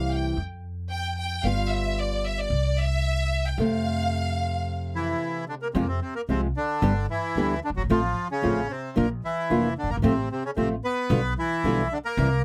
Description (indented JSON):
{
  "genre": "tango",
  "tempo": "112 BPM",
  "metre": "4/4",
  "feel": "rubato",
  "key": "F major",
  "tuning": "A4 = 443 Hz",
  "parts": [
    { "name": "rich chamber violin section", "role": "second line", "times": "0.0-5.2 s", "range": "D5 to G5", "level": "-32 LUFS", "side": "equal", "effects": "none" },
    { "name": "nylon-string guitar", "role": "accompaniment", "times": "0.0-12.3 s", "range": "B2 to G4", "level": "-28 LUFS", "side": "equal", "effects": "none" },
    { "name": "upright bass", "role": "bass", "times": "0.0-12.4 s", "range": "F1 to F2", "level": "-30 LUFS", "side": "equal", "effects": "none" },
    { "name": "bandoneon", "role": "melody", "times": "5.0-12.4 s", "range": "C3 to B4", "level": "-30 LUFS", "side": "equal", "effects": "none" }
  ],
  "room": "light reverb",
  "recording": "close, detailed microphones",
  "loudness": "-26 LUFS",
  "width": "mono",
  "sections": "0.0-5.7 A section; 5.7-12.4 B section",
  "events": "violin section solo 0.0-5.7",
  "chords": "0.4 Fsus2; 1.4 G7; 2.5 C; 3.6 F; 5.7 Fm; 6.8 G; 7.9 F/A; 9.0 Bb; 10.0 F/A; 11.1 G7/B"
}